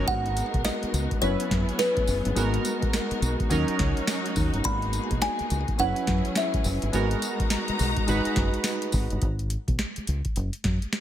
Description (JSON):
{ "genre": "R&B, new jack swing", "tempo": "105 BPM", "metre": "4/4", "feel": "swing 62% on 16ths", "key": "G# minor", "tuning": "A4 = 440 Hz", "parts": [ { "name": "warm analog keys", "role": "accompaniment", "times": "0.0-9.2 s", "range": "F#3 to B4", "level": "-29 LUFS", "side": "right 2 dB", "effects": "chorus" }, { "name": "warm studio string section", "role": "sustained chords", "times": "0.0-9.2 s", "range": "F#3 to A#5", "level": "-33 LUFS", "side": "left 2 dB", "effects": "none" }, { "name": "deep dub fingered electric bass", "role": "bass", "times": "0.0-10.8 s", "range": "F#1 to F#2", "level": "-27 LUFS", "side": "equal", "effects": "none" }, { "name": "kalimba", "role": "melody", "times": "0.1-6.8 s", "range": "B4 to B5", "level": "-29 LUFS", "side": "left 1 dB", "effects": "ping-pong delay" }, { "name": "booming analog drum machine", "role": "drums", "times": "0.1-11.0 s", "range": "hi-hat, kick drum, snare drum, tambourine", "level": "-28 LUFS", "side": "equal", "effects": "gated reverb" } ], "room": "little or no reverb", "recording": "none", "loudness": "-23 LUFS", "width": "side -11 dB against mid", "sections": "0.0-9.2 A section; 9.2-11.0 B section", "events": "none", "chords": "0.1 G#m9; 1.2 F#7sus4; 2.4 G#m9; 3.5 D#m7; 4.6 G#m9; 5.8 F#7sus4; 6.9 G#m9; 8.1 G#m7; 9.2 N.C." }